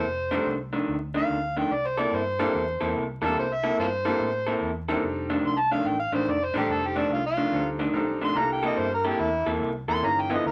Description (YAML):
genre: electric blues shuffle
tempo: 144 BPM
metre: 4/4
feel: swing 65% on 8ths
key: C mixolydian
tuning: A4 = 437 Hz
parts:
  - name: overdriven harmonica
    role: melody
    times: 0.0-10.5 s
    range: D4 to C6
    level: -29 LUFS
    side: equal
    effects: none
  - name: electric guitar through a small old amp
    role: riff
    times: 0.0-10.5 s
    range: F2 to A4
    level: -30 LUFS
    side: equal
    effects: none
  - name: vintage muted fingered electric bass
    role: bass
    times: 0.0-10.5 s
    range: F1 to A2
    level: -39 LUFS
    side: equal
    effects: none
  - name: bright upright piano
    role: accompaniment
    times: 0.3-10.5 s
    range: E3 to A4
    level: -33 LUFS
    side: equal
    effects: none
room: moderate studio reverb, RT60 0.5 s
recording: vinyl crackle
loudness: -26 LUFS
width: mono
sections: 0.0-10.5 A section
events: harmonica solo 0.0-10.5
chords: 0.0 F13; 1.7 C13; 5.0 F13; 8.4 C13